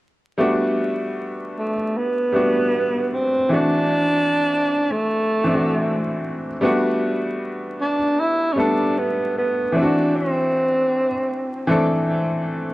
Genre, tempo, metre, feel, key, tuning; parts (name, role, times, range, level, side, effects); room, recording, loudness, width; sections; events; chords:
hip hop; 77 BPM; 4/4; swing 58% on 16ths; G major; A4 = 440 Hz
bright upright piano; accompaniment; 0.4-12.7 s; E3 to A4; -21 LUFS; equal; cassette tape, low-pass filter
breathy tenor saxophone; melody; 1.6-11.7 s; A3 to E4; -20 LUFS; right 1 dB; low-pass filter
wet studio reverb, RT60 0.5 s; dark, warm production, vinyl crackle, lossy compression artefacts; -18 LUFS; side -18 dB against mid
0.4-12.7 A section
0.4 Gmaj9; 3.5 D9; 6.6 Gmaj9; 9.7 D9